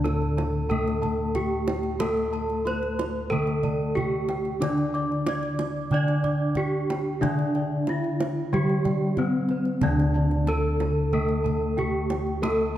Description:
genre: Javanese gamelan.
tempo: 92 BPM.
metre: 4/4.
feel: straight.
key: D slendro.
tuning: A4 = 440 Hz.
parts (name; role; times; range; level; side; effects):
gamelan-type bronze metallophone; melody; 0.0-12.8 s; C4-40c to D5; -28 LUFS; right 1 dB; slapback echo.
gamelan-type bronze metallophone; accompaniment; 0.0-12.8 s; D3 to D4; -29 LUFS; left 3 dB; none.
gamelan-type bossed gongs; arpeggios; 0.0-12.8 s; C5-40c to D6; -38 LUFS; left 4 dB; none.
gamelan-type bronze metallophone; arpeggios; 0.0-12.7 s; C5-40c to D6; -37 LUFS; right 2 dB; none.
gamelan-type bossed gongs; bass; 0.0-12.8 s; D2 to A4+20c; -28 LUFS; equal; none.
kendang; percussion; 0.1-12.7 s; none; -34 LUFS; right 4 dB; none.
room: moderate concert hall reverb, RT60 2.3 s.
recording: dark, warm production.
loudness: -23 LUFS.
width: side -12 dB against mid.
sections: 0.0-12.8 A section.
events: none.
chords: none.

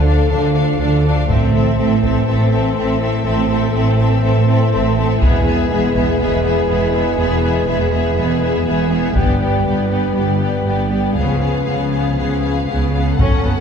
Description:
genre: cinematic, epic orchestral film score.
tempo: 122 BPM.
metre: 4/4.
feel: straight.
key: A minor.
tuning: A4 = 441 Hz.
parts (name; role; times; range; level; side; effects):
warm symphonic violin section; melody; 0.0-13.6 s; D5 to F#5; -26 LUFS; left 4 dB; none.
dark symphonic violin section; second line; 0.0-13.6 s; G4 to A4; -24 LUFS; left 4 dB; none.
clear symphonic viola section; accompaniment; 0.0-13.5 s; B3 to D4; -22 LUFS; right 1 dB; none.
mellow French horn section; sustained chords; 0.0-13.6 s; E3 to C5; -22 LUFS; left 2 dB; none.
rich symphonic cello section; bass; 0.0-13.5 s; E2 to D3; -20 LUFS; right 3 dB; none.
rich symphonic double bass section; bass; 0.0-13.5 s; E1 to D2; -19 LUFS; right 1 dB; none.
taiko ensemble; drums; 1.3-2.3, 5.2-6.2, 9.2-10.1, 13.2-13.6 s; none; -18 LUFS; left 1 dB; none.
room: wet scoring stage reverb, RT60 1.4 s.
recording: heard from further back in the room.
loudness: -14 LUFS.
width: side -7 dB against mid.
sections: 0.0-13.2 A section.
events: none.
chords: 0.0 Dm; 1.3 Am; 5.2 E; 9.2 G; 11.2 C#7.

